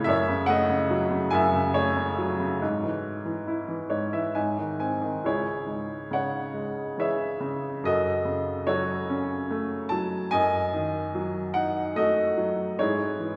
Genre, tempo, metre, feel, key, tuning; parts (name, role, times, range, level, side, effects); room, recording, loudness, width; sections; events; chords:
classical, lyrical solo piano; 71 BPM; 3/4; rubato; C# minor; A4 = 440 Hz
clear upright piano; solo; 0.0-13.4 s; C#2 to A5; -27 LUFS; equal
wet concert hall reverb, RT60 2.1 s; recorded in a church or concert hall; -27 LUFS; mono
0.0-5.2 A section; 5.2-13.4 B section
upright piano fill 3.5-5.2
0.1 F#m; 2.6 C#m/G#; 4.4 G#; 5.2 C#m; 7.8 F#m; 10.3 D#dim/F#; 12.8 C#m/G#